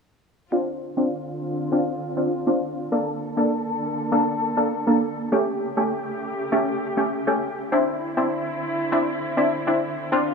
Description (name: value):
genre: dancehall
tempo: 100 BPM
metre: 4/4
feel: straight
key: D minor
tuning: A4 = 444 Hz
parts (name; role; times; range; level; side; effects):
- punchy chord stab; accompaniment; 0.5-10.3 s; A3 to A4; -22 LUFS; equal; chorus, low-pass filter
- warm studio string section; sustained chords; 0.5-10.3 s; C#3 to A4; -28 LUFS; equal; low-pass filter
room: moderate lush hall reverb, RT60 3.4 s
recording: none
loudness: -21 LUFS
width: side -5 dB against mid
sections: 0.5-10.3 A section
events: filter sweep 0.5-10.3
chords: 0.5 Dm7; 2.9 Bbmaj7; 5.3 A7; 7.7 Cadd9